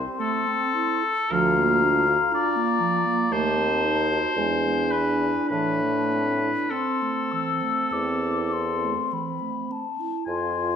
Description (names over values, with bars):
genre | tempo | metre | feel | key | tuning
classical, slow romantic movement for wind quintet | 49-61 BPM | 4/4 | rubato | A minor | A4 = 440 Hz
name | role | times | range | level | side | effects
mellow hollow concert flute | melody | 0.0-10.8 s | G#5 to E6 | -30 LUFS | left 8 dB | none
mellow clarinet | accompaniment | 0.0-10.3 s | E3 to A4 | -30 LUFS | right 8 dB | none
warm French horn | accompaniment | 0.0-10.8 s | C4 to F4 | -30 LUFS | equal | none
warm bassoon | bass | 0.0-10.8 s | D2 to A2 | -26 LUFS | right 2 dB | none
clear oboe | second line | 0.2-10.8 s | A4 to Ab5 | -25 LUFS | left 3 dB | none
room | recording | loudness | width
wet recital hall reverb, RT60 1.4 s | minimal, uncompressed stereo recording | -21 LUFS | side -8 dB against mid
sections
0.0-10.3 A section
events
none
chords
0.0 Am; 1.3 Bb/D; 3.3 D#dim7; 4.4 E7; 5.5 Am